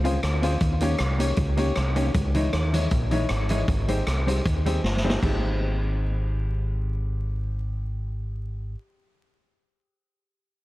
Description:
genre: ska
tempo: 156 BPM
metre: 4/4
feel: swing 53% on 8ths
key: Ab major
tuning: A4 = 440 Hz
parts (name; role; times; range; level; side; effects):
- hollow-body jazz guitar; accompaniment; 0.0-8.8 s; Fb3 to Ab4; -30 LUFS; right 2 dB; analog delay
- warm upright piano; stabs; 0.0-8.7 s; Db4 to Db5; -31 LUFS; left 4 dB; analog delay
- deep dub fingered electric bass; bass; 0.0-8.7 s; G1 to Eb2; -25 LUFS; equal; none
- swinging big-band drum kit; drums; 0.0-5.3 s; crash cymbal, hi-hat, kick drum, rim click, snare drum; -28 LUFS; equal; analog delay
room: little or no reverb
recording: vinyl crackle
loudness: -22 LUFS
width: side -18 dB against mid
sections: 0.0-5.2 A section; 5.2-8.3 B section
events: drum fill 4.8-5.2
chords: 0.0 Dbmaj7; 0.6 Eb7; 2.1 Dbmadd9; 3.7 Abmaj7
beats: 0.23 | 0.61 0.99 1.38 1.76 | 2.15 2.53 2.91 3.30 | 3.68 4.07 4.45 4.84 | 5.22 5.61 5.99 6.38 | 6.76 7.15 7.53 7.92

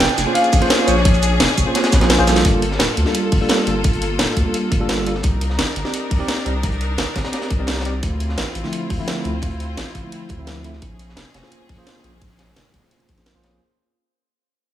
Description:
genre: liquid drum and bass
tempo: 172 BPM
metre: 4/4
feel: straight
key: G minor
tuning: A4 = 440 Hz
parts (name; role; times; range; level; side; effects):
- dark baby grand piano; melody; 0.0-2.1 s; Db5 to G5; -21 LUFS; left 1 dB; tape echo
- clear studio string section; sustained chords; 0.0-13.6 s; Bb3 to Bb4; -26 LUFS; left 2 dB; none
- saturated sub bass; bass; 0.0-13.6 s; D1 to D2; -22 LUFS; equal; none
- crunchy breakbeat drum kit; drums; 0.0-13.5 s; hi-hat, snare drum; -27 LUFS; equal; high-pass filter on hats, small room ambience, high-pass filter on snare, high-pass filter on room
- garage drum kit; drums; 0.0-13.5 s; hi-hat, shaker, snare drum; -21 LUFS; right 1 dB; small room ambience
- tine electric piano; accompaniment; 0.3-13.6 s; D3 to D5; -23 LUFS; right 1 dB; medium stereo tremolo, low-pass filter, tape echo
- electronic kick drum; drums; 0.5-13.2 s; none; -19 LUFS; equal; small room ambience
room: light reverb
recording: studio reverb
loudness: -16 LUFS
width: side -11 dB against mid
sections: 0.0-2.4 A section; 2.4-13.6 B section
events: drop 0.0-2.4; drum fill 2.3; fade-out 2.4-13.6; filter sweep on tine electric piano 2.4-13.6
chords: 0.0 Bbm9; 2.4 Gm9; 5.2 Cm9; 8.0 Dm9; 10.8 Bbm9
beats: 0.01 0.35 0.70 | 1.05 1.40 1.75 2.10 | 2.45 2.80 3.15 3.49 | 3.84 4.19 4.54 4.89 | 5.24 5.59 5.94 6.29 | 6.63 6.98 7.33 7.68 | 8.03 8.38 8.73 9.08 | 9.43 9.77 10.12 10.47 | 10.82 11.17 11.52 11.87 | 12.21 12.56 12.91 13.26

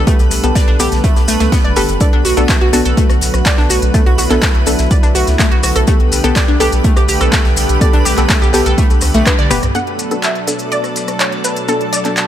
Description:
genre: progressive house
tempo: 124 BPM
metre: 4/4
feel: straight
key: B minor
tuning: A4 = 440 Hz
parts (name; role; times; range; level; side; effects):
- lush unison pad; sustained chords; 0.0-12.3 s; B2 to A4; -21 LUFS; equal; chorus, sidechain pumping
- analog pluck; arpeggios; 0.0-9.6 s; A3 to D5; -18 LUFS; equal; chorus, cassette tape, sidechain pumping, ping-pong delay
- wide unison pluck; stabs; 0.0-12.3 s; B3 to B4; -20 LUFS; left 2 dB; cassette tape, sidechain pumping, ping-pong delay
- saturated sub bass; bass; 0.0-9.7 s; F#1 to C#2; -16 LUFS; equal; sidechain pumping
- backwards swelling texture; texture; 0.0-12.3 s; B4 to D6; -26 LUFS; right 1 dB; built-in reverb, sidechain pumping
- deep house drum kit; drums; 0.1-12.3 s; handclaps, hi-hat, rim click, toms; -20 LUFS; equal; sidechain pumping on hats, sidechain pumping on toms
- electronic kick drum; drums; 0.1-9.4 s; none; -13 LUFS; equal; none
- gated 80s drum kit; drums; 0.1-9.6 s; hi-hat, snare drum; -28 LUFS; left 2 dB; none
- maracas; percussion; 0.1-12.3 s; none; -23 LUFS; left 3 dB; none
- wide unison pluck; melody; 9.3-12.3 s; A4 to F#5; -20 LUFS; equal; ping-pong delay
room: digital ambience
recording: none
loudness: -10 LUFS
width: side -11 dB against mid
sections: 0.0-9.7 A section; 9.7-12.3 B section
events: filter sweep on analog synth pad 0.0-9.7; band accent 9.3; drum fill 9.4-9.7; filter sweep on synth pluck 9.7-12.3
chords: 0.0 Gadd9/B; 2.0 Bm7; 5.9 Gadd9/B; 9.7 Bm7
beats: | 0.07 0.56 1.04 1.52 | 2.01 2.49 2.98 3.46 | 3.94 4.43 4.91 5.39 | 5.88 6.36 6.85 7.33 | 7.81 8.30 8.78 9.27 | 9.75 10.23 10.72 11.20 | 11.69 12.17

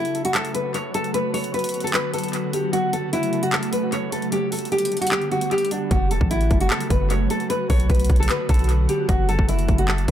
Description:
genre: hip hop, trap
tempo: 151 BPM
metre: 4/4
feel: half-time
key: F# phrygian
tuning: A4 = 442 Hz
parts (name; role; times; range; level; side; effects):
- nylon-string guitar; melody; 0.0-10.1 s; D4 to C#5; -24 LUFS; left 1 dB; low-pass filter, analog delay
- ethereal airy pad; sustained chords; 0.0-10.1 s; C#3 to G4; -27 LUFS; right 1 dB; ensemble chorus, built-in reverb
- trap drum kit; drums; 0.0-10.1 s; handclaps, hi-hat, kick drum; -24 LUFS; equal; analog delay
- long sustained 808-style bass; bass; 5.9-10.1 s; E1 to B1; -21 LUFS; equal; none
room: little or no reverb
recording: echo-heavy mix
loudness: -19 LUFS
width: side -10 dB against mid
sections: 0.0-10.1 A section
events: break 0.0-5.9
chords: 0.0 F#m; 1.1 Bm; 2.7 F#m; 4.3 G; 5.9 F#m; 7.5 Bm; 9.1 F#m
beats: 0.35 0.74 | 1.14 1.54 1.94 2.33 | 2.73 3.13 3.53 3.92 | 4.32 4.72 5.12 5.51 | 5.91 6.31 6.71 7.10 | 7.50 7.90 8.29 8.69 | 9.09 9.49 9.88

